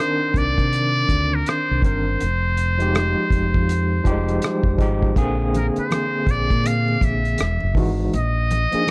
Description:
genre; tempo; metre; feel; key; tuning
R&B, neo-soul; 81 BPM; 4/4; swing 61% on 16ths; unclear; A4 = 435 Hz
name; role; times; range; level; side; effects
trumpet with metal mute; melody; 0.0-8.9 s; Bb4 to F5; -26 LUFS; equal; none
overdriven tine electric piano; accompaniment; 0.0-8.9 s; D3 to Bb4; -26 LUFS; equal; medium tremolo
cloth-damped thuddy drum kit; drums; 0.0-8.9 s; hi-hat, kick drum, rim click; -24 LUFS; equal; none
fingered electric bass; bass; 0.3-8.8 s; E1 to C3; -24 LUFS; equal; none
congas; percussion; 5.5-8.9 s; none; -34 LUFS; equal; none
room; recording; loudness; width
studio reverb; none; -20 LUFS; mono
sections
0.0-8.9 A section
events
none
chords
0.0 Cm9; 2.2 Fm9; 5.2 Bb9; 7.4 Emaj9; 8.1 Bb7sus4

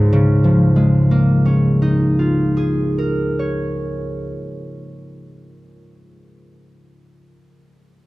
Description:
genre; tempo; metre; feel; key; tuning
classical, solo harp piece; 73 BPM; 3/4; rubato; Db major; A4 = 440 Hz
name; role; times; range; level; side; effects
concert harp; solo; 0.0-5.9 s; Db2 to Db6; -15 LUFS; equal; none
room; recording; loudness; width
moderate recital hall reverb, RT60 1.4 s; dark, warm production; -14 LUFS; side -20 dB against mid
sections
0.0-4.5 A section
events
none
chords
0.0 Db69

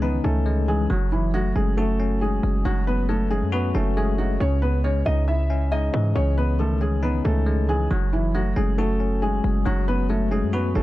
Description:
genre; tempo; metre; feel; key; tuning
hip hop, trap; 137 BPM; 4/4; half-time; unclear; A4 = 440 Hz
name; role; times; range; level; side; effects
felt-muted upright piano; melody; 0.0-10.8 s; E3 to E5; -26 LUFS; left 1 dB; none
bell-like tine electric piano; accompaniment; 0.0-10.8 s; C#3 to F#4; -27 LUFS; left 3 dB; medium stereo tremolo
hard-hitting 808-style bass; bass; 0.0-10.8 s; F#1 to G#2; -22 LUFS; equal; none
room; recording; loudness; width
studio ambience; dark, warm production; -20 LUFS; side -16 dB against mid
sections
0.0-10.8 A section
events
none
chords
0.0 C#madd9; 0.9 F#madd9; 4.4 C#madd9; 7.9 F#madd9

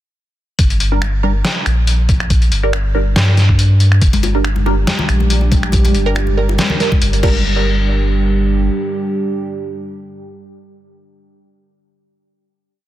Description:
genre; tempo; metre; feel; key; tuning
deep dubstep; 140 BPM; 4/4; swing 54% on 16ths, half-time; G minor; A4 = 440 Hz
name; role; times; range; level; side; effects
soft dub sub bass; bass; 0.6-8.7 s; G1 to G2; -14 LUFS; equal; tube saturation
electronic kick drum; drums; 0.6-7.3 s; none; -14 LUFS; equal; none
trip hop sampler-style drum kit; drums; 0.6-7.3 s; crash cymbal, finger snaps, hi-hat, snare drum; -20 LUFS; left 1 dB; soft clipping on snare
filtered dub chord stab; stabs; 0.9-11.4 s; G3 to Bb4; -23 LUFS; right 3 dB; phaser, wide subtle chorus, dub echo
dark analog pad; sustained chords; 4.6-11.4 s; G3 to G4; -21 LUFS; right 3 dB; chorus
congas and bongos; percussion; 4.1-7.3 s; none; -23 LUFS; left 5 dB; dub echo
room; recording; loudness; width
little or no reverb; dense, heavily limited modern master; -12 LUFS; side -14 dB against mid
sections
0.6-7.4 drop; 7.4-10.9 final hit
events
drop 0.6-7.4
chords
0.6 Gm

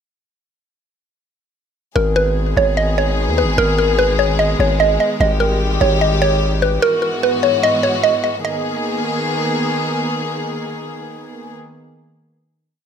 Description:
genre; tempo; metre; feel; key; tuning
hip hop, trap; 148 BPM; 4/4; half-time; G# minor; A4 = 441 Hz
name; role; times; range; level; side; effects
mallet-like synth pluck; melody; 2.0-9.6 s; A#4 to D#5; -16 LUFS; right 1 dB; chorus, phaser
dark chamber string section; sustained chords; 2.0-11.5 s; G#2 to G#4; -20 LUFS; left 1 dB; none
distorted 808-style bass; bass; 2.0-6.8 s; G#1 to D#2; -18 LUFS; equal; distortion
room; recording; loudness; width
moderate recital hall reverb, RT60 1.3 s, small room ambience; none; -14 LUFS; side -7 dB against mid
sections
2.0-8.4 breakdown; 8.4-11.7 final chord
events
none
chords
2.0 G#m; 5.2 D#/G#; 6.8 Eadd9/G#; 8.4 G#madd9

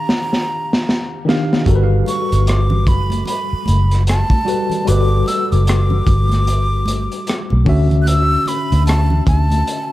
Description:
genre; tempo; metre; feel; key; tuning
R&B, neo-soul; 75 BPM; 4/4; swing 60% on 16ths; G lydian; A4 = 442 Hz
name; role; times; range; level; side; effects
breathy jazz flute; melody; 0.0-9.9 s; A5 to F#6; -22 LUFS; right 1 dB; tape echo
tine electric piano; accompaniment; 0.0-9.9 s; D3 to F5; -22 LUFS; left 2 dB; fast stereo tremolo, tape echo
crunchy breakbeat drum kit; drums; 0.1-9.9 s; hi-hat, kick drum, rim click, snare drum; -19 LUFS; equal; none
vintage muted fingered electric bass; bass; 1.7-9.6 s; F#1 to D2; -14 LUFS; equal; none
congas; percussion; 2.1-9.7 s; none; -28 LUFS; right 2 dB; tape echo
room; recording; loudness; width
little or no reverb; echo-heavy mix; -13 LUFS; side -16 dB against mid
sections
0.0-9.9 A section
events
drum fill 0.1-1.7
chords
0.0 Ebmaj9; 1.7 Gmaj9; 7.7 Dmaj9

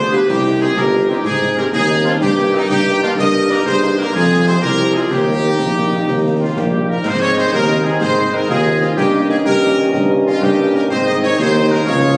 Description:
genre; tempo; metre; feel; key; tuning
military-style march for wind band; 124 BPM (dotted quarters); 6/8; straight; Eb major, Ab major from 3.2 s; A4 = 439 Hz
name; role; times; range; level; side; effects
clear trumpet section; melody; 0.0-12.2 s; Eb4 to Eb5; -21 LUFS; equal; none
warm woodwind section; second line; 0.0-12.2 s; C4 to F5; -25 LUFS; equal; none
mellow French horn section; accompaniment; 0.0-12.1 s; Eb3 to F4; -30 LUFS; equal; none
warm tuba; bass; 0.0-12.2 s; G1 to Ab2; -18 LUFS; equal; none
mellow trombone section; sustained chords; 0.1-12.2 s; C3 to Db4; -30 LUFS; equal; none
concert snare drum, concert bass drum and clash cymbals; drums; 0.1-12.0 s; none; -30 LUFS; equal; none
warm euphonium; second line; 5.6-12.2 s; F3 to G4; -26 LUFS; equal; none
room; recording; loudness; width
wet concert hall reverb, RT60 2.1 s; recorded on a phone in the room, studio reverb, compression, nothing above 10.3 kHz; -15 LUFS; mono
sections
0.0-7.0 A section; 7.0-12.2 B section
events
none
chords
0.3 Cm; 1.2 Ab; 2.2 Eb/G; 4.1 Fm; 5.1 Eb; 7.0 Ab; 9.0 Eb7/G; 10.9 Ab

